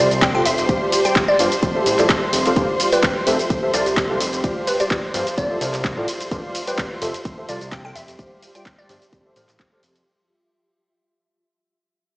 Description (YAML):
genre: piano house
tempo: 128 BPM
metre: 4/4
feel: swing 54% on 16ths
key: unclear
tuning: A4 = 440 Hz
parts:
  - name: glassy wavetable pluck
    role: melody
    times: 0.0-9.1 s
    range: B4 to G5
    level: -23 LUFS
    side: equal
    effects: chorus, tape echo
  - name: muted studio violin section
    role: sustained chords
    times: 0.0-10.1 s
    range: C5 to C6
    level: -27 LUFS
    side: equal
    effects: sidechain pumping
  - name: percussive organ stab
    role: riff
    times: 0.0-9.8 s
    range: F3 to G5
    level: -23 LUFS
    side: equal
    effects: ensemble chorus, sidechain pumping, tape echo
  - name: fat analog bass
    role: bass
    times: 0.0-10.0 s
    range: F1 to C2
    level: -25 LUFS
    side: equal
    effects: sidechain pumping
  - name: granular cloud pad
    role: texture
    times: 0.0-10.1 s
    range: F4 to C6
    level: -27 LUFS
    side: right 1 dB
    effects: built-in reverb, sidechain pumping
  - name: punchy analog drum machine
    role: drums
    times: 0.1-10.0 s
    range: handclaps, hi-hat, ride cymbal, shaker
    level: -24 LUFS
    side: equal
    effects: none
  - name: electronic kick drum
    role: drums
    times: 0.2-9.7 s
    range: none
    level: -23 LUFS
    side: equal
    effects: none
room: moderate lush hall reverb, RT60 1.8 s, digital ambience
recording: played on a big sound system in a bare room, stone room reverb, small speaker sound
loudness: -17 LUFS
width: side -22 dB against mid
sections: 0.0-10.1 A section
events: drop 0.0-10.1; fade-out 2.6-10.1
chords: 0.0 Fmaj9; 0.7 G7sus4; 1.6 Dm9/F; 2.6 G7sus4; 3.3 Fmaj9; 4.4 G7sus4; 5.4 Dm9/F; 6.3 G7sus4; 7.0 Fmaj9; 8.2 G7sus4; 9.1 Dm9/F